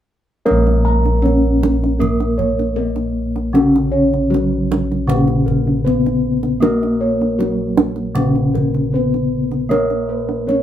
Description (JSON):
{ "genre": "Javanese gamelan", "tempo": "78 BPM", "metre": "4/4", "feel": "straight", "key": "unclear", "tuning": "A4 = 440 Hz", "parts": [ { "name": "gamelan-type bronze metallophone", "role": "melody", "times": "0.5-10.6 s", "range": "Gb3 to Bb4", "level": "-20 LUFS", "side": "left 2 dB", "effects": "none" }, { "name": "gamelan-type bronze metallophone", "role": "accompaniment", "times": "0.5-10.6 s", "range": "Db3 to Bb3", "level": "-21 LUFS", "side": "right 1 dB", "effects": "none" }, { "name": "gamelan-type bossed gongs", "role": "arpeggios", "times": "0.5-10.6 s", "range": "Gb4 to Bb5", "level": "-24 LUFS", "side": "right 1 dB", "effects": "none" }, { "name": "gamelan-type bossed gongs", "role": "bass", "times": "0.5-10.6 s", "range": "Bb1 to Bb4", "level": "-18 LUFS", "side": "left 1 dB", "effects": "none" }, { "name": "kendang", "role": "percussion", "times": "0.5-10.6 s", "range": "none", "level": "-21 LUFS", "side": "right 5 dB", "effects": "none" } ], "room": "moderate studio reverb, RT60 0.6 s", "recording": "band playing live in one room", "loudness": "-14 LUFS", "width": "side -11 dB against mid", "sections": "0.5-10.6 A section", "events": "none", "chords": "none", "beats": "| 0.47 1.23 2.00 2.77 | 3.54 4.31 5.08 5.85 | 6.62 7.39 8.16 8.93 | 9.70 10.46" }